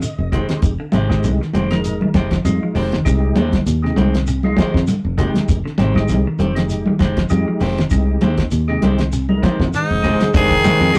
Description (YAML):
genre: afrobeat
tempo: 99 BPM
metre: 4/4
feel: swing 55% on 16ths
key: F dorian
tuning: A4 = 445 Hz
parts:
  - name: percussive tonewheel organ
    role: accompaniment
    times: 0.0-11.0 s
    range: Ab3 to Eb5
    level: -27 LUFS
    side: equal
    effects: chorus vibrato, slow rotary speaker
  - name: clean electric guitar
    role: arpeggios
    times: 0.0-11.0 s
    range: C3 to D4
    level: -27 LUFS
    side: equal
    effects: spring reverb
  - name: cloth-damped thuddy drum kit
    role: drums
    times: 0.0-11.0 s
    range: hi-hat, kick drum, snare drum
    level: -23 LUFS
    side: equal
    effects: none
  - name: shekere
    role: percussion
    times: 0.0-11.0 s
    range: none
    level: -30 LUFS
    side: equal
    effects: none
  - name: fingered electric bass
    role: bass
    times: 0.2-10.9 s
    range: F1 to F2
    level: -22 LUFS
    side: equal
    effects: none
  - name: clean electric guitar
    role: stabs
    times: 0.3-10.8 s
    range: Eb3 to G4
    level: -26 LUFS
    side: equal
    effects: none
  - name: congas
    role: percussion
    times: 0.3-11.0 s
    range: none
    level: -22 LUFS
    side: equal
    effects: none
  - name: raspy tenor saxophone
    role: melody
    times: 9.8-11.0 s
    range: Eb4 to Ab4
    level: -19 LUFS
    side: equal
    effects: none
  - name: growling trombone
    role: second line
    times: 9.8-11.0 s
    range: Ab2 to Eb3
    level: -24 LUFS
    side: equal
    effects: none
room: light reverb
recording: rough rehearsal-room recording, tube saturation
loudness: -17 LUFS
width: mono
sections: 0.0-10.3 A section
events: tonewheel organ fill 0.0-0.6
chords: 0.0 Fm9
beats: 0.02 | 0.63 1.24 1.85 2.46 | 3.06 3.67 4.28 4.88 | 5.49 6.10 6.70 7.31 | 7.92 8.52 9.13 9.73 | 10.34 10.94